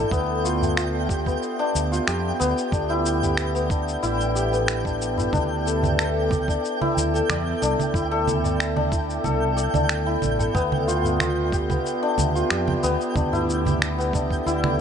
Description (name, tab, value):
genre	organic downtempo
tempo	92 BPM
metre	4/4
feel	straight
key	D dorian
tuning	A4 = 444 Hz
part	warbly tape-like pad	sustained chords	0.0-14.8 s	B3 to E5	-30 LUFS	equal	chorus, built-in reverb, sidechain pumping
part	santur	arpeggios	0.0-14.8 s	B3 to D5	-24 LUFS	left 2 dB	digital delay
part	fretless electric bass	bass	0.0-14.8 s	A1 to F2	-26 LUFS	right 1 dB	sidechain pumping
part	twinkling granular texture	texture	0.0-14.8 s	G5	-32 LUFS	right 4 dB	built-in reverb
part	electronic kick drum	drums	0.1-14.4 s	none	-26 LUFS	right 1 dB	none
part	electronic shaker, finger snaps and congas	drums	0.1-14.8 s	none	-28 LUFS	right 3 dB	none
part	udu	percussion	0.6-13.8 s	none	-30 LUFS	left 1 dB	none
room	light reverb, digital ambience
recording	nothing above 10.6 kHz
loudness	-20 LUFS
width	side -7 dB against mid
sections	0.0-14.8 A section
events	none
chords	0.1 G7/D; 2.7 Em7/D; 5.3 Dsus2; 10.6 G7/D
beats	| 0.12 0.77 1.42 2.08 | 2.73 3.38 4.03 4.68 | 5.34 5.99 6.64 7.29 | 7.95 8.60 9.25 9.90 | 10.55 11.21 11.86 12.51 | 13.16 13.81 14.47